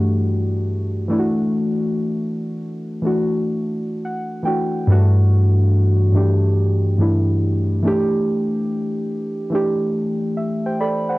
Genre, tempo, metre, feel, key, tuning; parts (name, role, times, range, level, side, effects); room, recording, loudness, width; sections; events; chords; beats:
hip hop; 71 BPM; 4/4; swing 66% on 16ths; A4 = 441 Hz
muted felt-like synth keys; solo; 0.0-11.2 s; G2 to B5; -17 LUFS; equal; chorus, cassette tape
moderate booth ambience, RT60 0.2 s; home recording on cassette; -17 LUFS; side -20 dB against mid
0.0-4.9 A section; 4.9-11.2 B section
synth keys fill 9.9-11.2
0.0 Gsus2; 1.1 Esus2; 4.9 Gsus2; 7.8 A7sus4
0.65 | 1.50 2.34 3.19 4.03 | 4.88 5.72 6.57 7.41 | 8.26 9.10 9.95 10.79